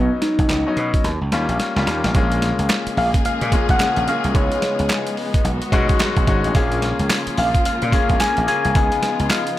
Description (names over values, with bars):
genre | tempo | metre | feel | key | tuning
R&B, new jack swing | 109 BPM | 4/4 | swing 62% on 16ths | unclear | A4 = 440 Hz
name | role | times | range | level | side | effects
soft struck synth lead | melody | 0.0-9.6 s | B3 to G#5 | -21 LUFS | left 1 dB | chorus
bright concert grand piano | accompaniment | 0.0-9.6 s | F#3 to G#4 | -23 LUFS | left 4 dB | none
gritty slap bass | bass | 0.0-9.3 s | G#1 to B2 | -22 LUFS | right 1 dB | overdrive
boom bap sampler-style drum kit | drums | 0.2-9.6 s | handclaps, hi-hat, kick drum, snare drum, tambourine | -20 LUFS | right 1 dB | none
warm studio string section | sustained chords | 2.1-9.6 s | C#3 to G#4 | -27 LUFS | left 1 dB | none
group handclap | percussion | 2.7-9.5 s | none | -35 LUFS | right 4 dB | none
room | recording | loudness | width
small room ambience | none | -16 LUFS | side -14 dB against mid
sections
0.0-2.1 A section; 2.1-9.6 B section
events
drum fill 1.0-2.1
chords
0.0 Badd9; 1.0 D#7; 2.1 A#m7; 4.3 C#7; 5.5 B6; 6.6 A#m7; 8.8 C#7